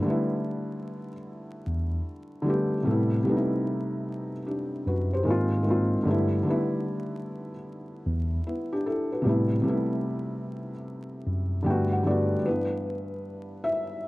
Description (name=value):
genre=lo-fi hip hop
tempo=75 BPM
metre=4/4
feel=swing 65% on 16ths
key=G major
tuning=A4 = 440 Hz
part: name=felt-muted upright piano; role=accompaniment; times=0.0-14.1 s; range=G2 to G5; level=-26 LUFS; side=equal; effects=cassette tape
part: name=mellow tine electric piano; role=bass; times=1.7-12.3 s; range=E2 to A2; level=-27 LUFS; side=equal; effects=medium stereo tremolo
room=light reverb, small room ambience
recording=dark, warm production, vinyl crackle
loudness=-25 LUFS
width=side -19 dB against mid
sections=0.0-12.5 A section; 12.5-14.1 B section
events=felt piano fill 11.3-12.5; felt piano solo 12.5-14.1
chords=0.0 G6; 2.9 Am7; 5.3 Ab6; 6.1 G6; 9.3 Am7; 11.7 Gmaj9; 12.5 G6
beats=0.46 1.26 2.06 | 2.86 3.66 4.46 5.26 | 6.06 6.86 7.66 8.46 | 9.26 10.06 10.86 11.66 | 12.46 13.26 14.06